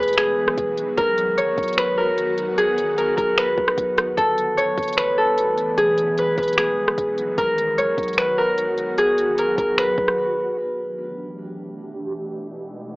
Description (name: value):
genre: hip hop, atmospheric cloud-rap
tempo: 150 BPM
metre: 4/4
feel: half-time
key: B major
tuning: A4 = 439 Hz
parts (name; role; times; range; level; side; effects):
- Celtic harp; melody; 0.0-11.8 s; G#4 to C#5; -19 LUFS; equal; low-pass filter, cassette tape, tape echo
- ethereal airy pad; sustained chords; 0.1-13.0 s; B2 to G4; -30 LUFS; equal; ensemble chorus, built-in reverb, phaser, sidechain pumping, low-pass filter, cassette tape
- warm 808-style bass; bass; 0.0-10.2 s; D#1 to B1; -38 LUFS; equal; none
- smooth R&B drum kit; drums; 0.0-10.2 s; finger snaps, hi-hat, kick drum, rim click; -23 LUFS; equal; cassette tape
room: light reverb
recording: home recording on cassette, AM radio sound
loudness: -18 LUFS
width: side -23 dB against mid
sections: 0.0-10.6 A section; 10.6-13.0 B section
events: break 10.2-10.6; filter sweep on ambient pad 10.6-13.0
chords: 0.0 Emaj9; 1.0 Bmaj7; 4.2 G69; 5.8 Emaj9; 7.4 Bmaj7; 10.6 G69; 12.2 Emaj9